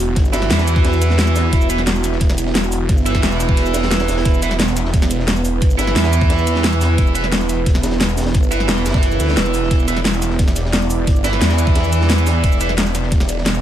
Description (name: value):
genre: dark technical drum and bass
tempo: 176 BPM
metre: 4/4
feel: straight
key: E minor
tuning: A4 = 440 Hz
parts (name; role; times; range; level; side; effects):
- dark analog pad; sustained chords; 0.0-13.6 s; B3 to D5; -23 LUFS; right 3 dB; chorus, sidechain pumping
- snarling distorted saw bass; bass; 0.0-13.6 s; E1 to E2; -18 LUFS; equal; distortion, tube saturation, sidechain pumping
- crunchy breakbeat drum kit; drums; 0.2-13.5 s; hi-hat, snare drum; -29 LUFS; left 1 dB; high-pass filter on hats, studio reverb, high-pass filter on snare, high-pass filter on room
- dubstep drum kit; drums; 0.2-13.6 s; cabasa, hi-hat, snare drum; -21 LUFS; left 1 dB; studio reverb
- electronic kick drum; drums; 0.2-13.2 s; none; -15 LUFS; equal; studio reverb
- distorted electric guitar; stabs; 0.3-12.7 s; E4 to E5; -22 LUFS; right 3 dB; overdrive, ping-pong delay
room: little or no reverb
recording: none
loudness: -14 LUFS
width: side -11 dB against mid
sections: 0.0-13.6 A section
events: kick drops out 3.6-4.3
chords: 0.0 E5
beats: | 0.16 0.50 0.84 1.19 | 1.53 1.87 2.21 2.55 | 2.89 3.23 3.57 3.91 | 4.25 4.59 4.94 5.28 | 5.62 5.96 6.30 6.64 | 6.98 7.32 7.66 8.00 | 8.35 8.69 9.03 9.37 | 9.71 10.05 10.39 10.73 | 11.07 11.41 11.75 12.10 | 12.44 12.78 13.12 13.46